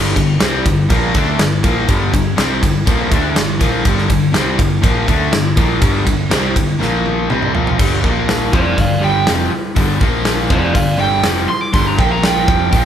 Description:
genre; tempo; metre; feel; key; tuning
hard rock; 122 BPM; 4/4; straight; G minor; A4 = 440 Hz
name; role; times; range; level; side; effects
distorted electric guitar; riff; 0.0-12.8 s; F2 to D4; -18 LUFS; left 6 dB; distortion
overdriven semi-hollow guitar; riff; 0.0-12.8 s; F2 to D4; -21 LUFS; right 6 dB; none
picked electric bass; bass; 0.0-12.8 s; F1 to D2; -21 LUFS; equal; none
huge arena drum kit; drums; 0.0-12.8 s; crash cymbal, hi-hat, kick drum, ride cymbal, snare drum, toms; -16 LUFS; equal; none
lead guitar through a small cranked amp; melody; 8.5-12.8 s; Bb4 to D6; -18 LUFS; right 4 dB; overdrive
room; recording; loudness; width
moderate large studio reverb, RT60 1.1 s; band playing live in one room; -12 LUFS; side -9 dB against mid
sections
0.0-7.8 A section; 7.8-12.8 B section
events
drum fill 6.8-7.8; lead electric guitar solo 7.8-12.8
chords
0.0 Gm; 6.8 Bb5; 7.3 Gm; 7.8 G5; 8.0 Bb5; 8.5 G5; 10.0 Bb5; 10.5 Gm; 12.0 Bb5; 12.5 Fsus2

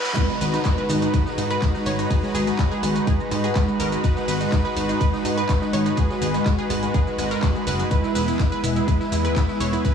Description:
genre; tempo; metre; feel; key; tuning
progressive house; 124 BPM; 4/4; straight; G# minor; A4 = 438 Hz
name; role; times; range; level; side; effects
lush unison pad; sustained chords; 0.0-9.9 s; F#2 to A#5; -29 LUFS; left 1 dB; chorus, sidechain pumping
soft supersaw; stabs; 0.0-9.9 s; G#3 to B4; -26 LUFS; right 2 dB; sidechain pumping, dub echo
vintage drum kit; drums; 0.0-9.9 s; hi-hat, ride cymbal, snare drum; -41 LUFS; left 1 dB; none
riser, reverse cymbal and downlifter; sound effects; 0.0-4.0 s; none; -33 LUFS; left 1 dB; none
wide unison pluck; arpeggios; 0.1-9.9 s; G#3 to C#5; -28 LUFS; right 1 dB; sidechain pumping, dub echo
pop drum kit; drums; 0.1-9.9 s; crash cymbal, handclaps, hi-hat, rim click, shaker, snare drum; -32 LUFS; right 1 dB; high-pass filter on snare, sidechain pumping on hats, high-pass filter on hats, sidechain pumping on perc, high-pass filter on perc, sidechain pumping on cymbals, high-pass filter on cymbals
electronic kick drum; drums; 0.2-9.9 s; none; -22 LUFS; left 1 dB; high-pass filter on kick
plucky analog bass; bass; 0.4-9.8 s; E1 to G#2; -26 LUFS; left 1 dB; sidechain pumping
room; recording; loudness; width
moderate digital room reverb, RT60 1.0 s, digital ambience; high-pass filter, studio ambience; -19 LUFS; side -7 dB against mid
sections
0.2-9.9 A section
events
drum fill 0.0; riser 0.0; reverse cymbal 0.0; drop 0.2-9.9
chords
0.2 G#m7; 7.9 E

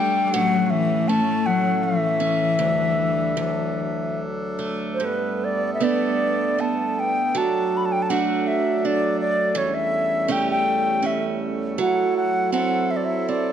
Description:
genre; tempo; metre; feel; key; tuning
celtic folk, Celtic slow air; 72-83 BPM; 3/4; rubato; G major; A4 = 440 Hz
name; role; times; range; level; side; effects
bright baroque flute; melody; 0.0-13.5 s; B4 to B5; -23 LUFS; left 1 dB; none
clear cello; second line; 0.0-4.2 s; E3 to A3; -24 LUFS; left 7 dB; none
picked acoustic archtop guitar; accompaniment; 0.0-13.5 s; D2 to A4; -25 LUFS; right 6 dB; none
hand-pumped harmonium; sustained chords; 0.0-13.5 s; E2 to A4; -29 LUFS; equal; none
room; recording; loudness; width
moderate concert hall reverb, RT60 1.9 s; dark, warm production; -20 LUFS; side -9 dB against mid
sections
0.0-5.0 A section; 5.0-13.5 B section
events
none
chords
0.3 A; 2.6 Dsus4; 3.4 D; 5.0 Gadd9; 7.3 D/F#; 9.6 A7/E; 11.8 F#m7b5

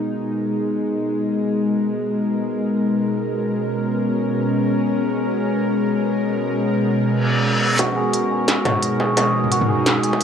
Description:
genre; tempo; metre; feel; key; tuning
half-time drum and bass; free time; none; none; G# minor; A4 = 440 Hz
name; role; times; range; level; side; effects
bowed-like drone; sustained chords; 0.0-10.2 s; B2 to A#4; -19 LUFS; left 1 dB; built-in reverb, sidechain pumping
reverse cymbal and riser; sound effects; 7.2-10.2 s; none; -25 LUFS; left 1 dB; none
santur; arpeggios; 7.8-10.2 s; F#4 to G#5; -21 LUFS; right 1 dB; vintage 12-bit sampler grit, low-pass filter, tape echo
electronic kick drum; drums; 7.8-10.2 s; none; -22 LUFS; right 1 dB; distortion, high-pass filter on kick, high-pass filter on room
industrial drum kit; drums; 7.8-10.2 s; hi-hat, snare drum, toms; -20 LUFS; equal; none
room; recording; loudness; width
light reverb; dry, gritty hardware recording, small room ambience; -18 LUFS; side -7 dB against mid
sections
0.0-7.8 A section; 7.8-10.2 B section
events
filter sweep on synth drone 0.0-7.8; reverse cymbal 7.2-7.8; build-up 7.8-10.2; filter sweep on santur 7.8-10.2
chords
0.0 G#madd9

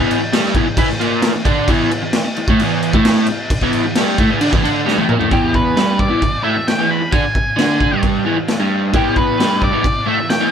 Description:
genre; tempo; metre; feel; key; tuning
garage rock duo or trio; 132 BPM; 4/4; straight; unclear; A4 = 440 Hz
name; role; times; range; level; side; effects
crunchy overdriven guitar; riff; 0.0-10.5 s; E2 to E4; -16 LUFS; equal; none
raw garage drum kit; drums; 0.1-10.4 s; crash cymbal, kick drum, snare drum, toms; -17 LUFS; equal; none
octave-fuzz lead guitar; melody; 5.3-10.5 s; G4 to B5; -19 LUFS; right 1 dB; distortion
room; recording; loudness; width
moderate small room reverb, RT60 0.5 s; band playing live in one room; -13 LUFS; side -8 dB against mid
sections
0.0-5.3 A section; 5.3-10.5 B section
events
drum fill 4.9-5.3; lead electric guitar solo 5.3-10.5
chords
0.0 Emadd11; 5.3 E5

